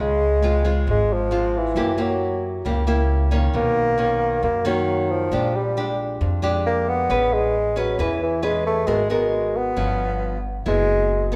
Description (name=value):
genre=bossa nova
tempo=135 BPM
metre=4/4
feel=straight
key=unclear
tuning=A4 = 441 Hz
part: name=mellow bassoon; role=melody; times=0.0-11.3 s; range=E3 to Cb4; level=-24 LUFS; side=equal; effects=none
part: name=nylon-string guitar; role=accompaniment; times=0.0-11.4 s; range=F2 to B4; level=-27 LUFS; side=equal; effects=none
part: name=upright bass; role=bass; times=0.0-11.4 s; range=Gb1 to Gb2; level=-27 LUFS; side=equal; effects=none
room=wet recital hall reverb, RT60 1.4 s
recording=recorded in a church or concert hall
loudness=-21 LUFS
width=mono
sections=0.0-11.4 A section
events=none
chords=0.0 Dbmaj7; 1.8 Gb7b9; 3.5 Cbmaj9; 5.3 Bb6; 7.1 Amaj9; 8.9 Abm9; 9.8 G7#11; 10.7 Gb9sus4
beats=0.42 0.87 1.31 | 1.76 2.20 2.65 3.09 | 3.54 3.98 4.42 4.87 | 5.32 5.76 6.21 6.65 | 7.09 7.54 7.98 8.43 | 8.87 9.32 9.76 10.21 | 10.65 11.10